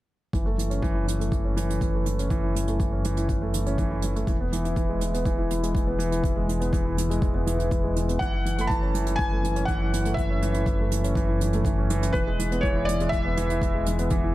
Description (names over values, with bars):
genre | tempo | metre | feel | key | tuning
piano and strings electronica | 122 BPM | 4/4 | straight | F# minor | A4 = 445 Hz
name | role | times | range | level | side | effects
warm grand piano | riff | 0.3-14.3 s | E3 to E4 | -27 LUFS | equal | tape echo
round analog bass | bass | 0.3-14.3 s | E1 to F#1 | -28 LUFS | equal | sidechain pumping
electronic kick drum | drums | 0.3-14.2 s | none | -27 LUFS | equal | overdrive
hi-hat | drums | 0.3-14.2 s | none | -37 LUFS | right 6 dB | none
felt-muted upright piano | melody | 8.2-14.3 s | B4 to B5 | -30 LUFS | equal | none
room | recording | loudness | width
light reverb, studio reverb | none | -22 LUFS | side -16 dB against mid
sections
0.3-14.3 A section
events
none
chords
0.3 F#m7; 4.3 E; 8.2 F#m7; 12.1 E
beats
| 0.34 0.83 1.32 1.82 | 2.31 2.80 3.29 3.78 | 4.28 4.77 5.26 5.75 | 6.24 6.74 7.23 7.72 | 8.21 8.70 9.19 9.69 | 10.18 10.67 11.16 11.65 | 12.14 12.64 13.13 13.62 | 14.11